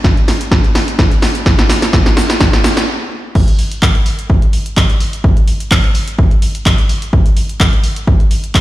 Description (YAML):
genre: house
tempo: 127 BPM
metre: 4/4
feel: swing 54% on 16ths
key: none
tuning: none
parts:
  - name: electronic kick drum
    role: drums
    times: 0.0-8.6 s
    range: none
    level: -11 LUFS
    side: equal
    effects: none
  - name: punchy analog drum machine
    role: drums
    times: 0.0-8.6 s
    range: crash cymbal, handclaps, hi-hat, snare drum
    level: -16 LUFS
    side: equal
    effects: sidechain pumping on hats, sidechain pumping on cymbals
  - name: egg shaker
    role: percussion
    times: 0.0-2.9 s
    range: none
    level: -35 LUFS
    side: right 4 dB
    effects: none
room: light reverb, digital ambience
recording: played on a big sound system in a bare room, large studio reverb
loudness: -10 LUFS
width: side -16 dB against mid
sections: 0.0-3.4 A section; 3.4-8.6 B section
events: build-up 0.0-3.4; drum fill 0.0-2.9; stop 2.9-3.4; drop 3.4-8.6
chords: none